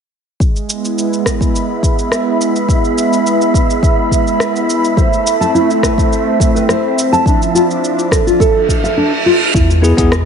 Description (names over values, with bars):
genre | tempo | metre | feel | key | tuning
organic downtempo | 105 BPM | 4/4 | straight | E phrygian dominant | A4 = 440 Hz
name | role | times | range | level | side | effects
warm analog pad | sustained chords | 0.4-10.3 s | B2 to B5 | -16 LUFS | equal | chorus, tremolo, sidechain pumping, shimmer reverb
electronic kick drum | drums | 0.4-10.1 s | none | -14 LUFS | left 1 dB | none
organic electronic drum kit | drums | 0.4-10.2 s | hi-hat, rim click, shaker | -20 LUFS | equal | none
wind-like tuned noise texture | texture | 1.6-9.0 s | E5 | -20 LUFS | right 6 dB | built-in reverb, shimmer reverb
nylon-string guitar | arpeggios | 5.0-9.9 s | D4 to A5 | -15 LUFS | equal | ping-pong delay, shimmer reverb
reverse cymbal | sound effects | 8.6-9.5 s | none | -18 LUFS | right 4 dB | none
warm sub bass | bass | 9.5-10.3 s | E2 | -13 LUFS | equal | sidechain pumping
bell-like tine electric piano | accompaniment | 9.8-10.1 s | B3 to G#4 | -13 LUFS | left 2 dB | sidechain pumping
room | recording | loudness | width
moderate lush hall reverb, RT60 2.5 s | nothing above 10.9 kHz | -11 LUFS | side -7 dB against mid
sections
0.4-9.5 A section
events
reverse cymbal 8.6-9.5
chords
0.4 E; 5.0 Amadd9; 7.3 Dmadd9; 9.5 E